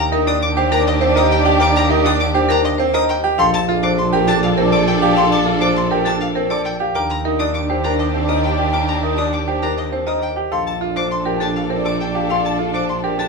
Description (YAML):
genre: classical, minimalist pattern music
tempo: 101 BPM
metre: 3/4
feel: straight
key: Bb major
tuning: A4 = 441 Hz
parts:
  - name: mellow alto flute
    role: second line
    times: 0.0-13.2 s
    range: D4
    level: -24 LUFS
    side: right 2 dB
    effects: none
  - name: rich studio violin section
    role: sustained chords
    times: 0.0-13.3 s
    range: D4 to A4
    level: -24 LUFS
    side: left 2 dB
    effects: none
  - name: rich violin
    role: arpeggios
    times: 0.0-13.3 s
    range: Eb5 to Eb6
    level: -24 LUFS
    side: left 3 dB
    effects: none
  - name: clear double bass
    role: bass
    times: 0.0-13.3 s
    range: Bb1 to Eb2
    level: -21 LUFS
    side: right 3 dB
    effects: none
  - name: marimba with medium hard mallets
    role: melody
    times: 0.1-13.3 s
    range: A4 to G5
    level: -21 LUFS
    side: left 8 dB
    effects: none
  - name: bright baby grand piano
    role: arpeggios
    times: 0.1-13.3 s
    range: C4 to Bb4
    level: -21 LUFS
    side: right 7 dB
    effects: none
room: moderate large studio reverb, RT60 1.1 s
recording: small room ambience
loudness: -15 LUFS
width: side -3 dB against mid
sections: 0.0-13.3 A section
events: none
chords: 0.0 Ebmaj7; 3.4 Bbmaj9; 6.9 Ebmaj7; 10.5 Bbmaj9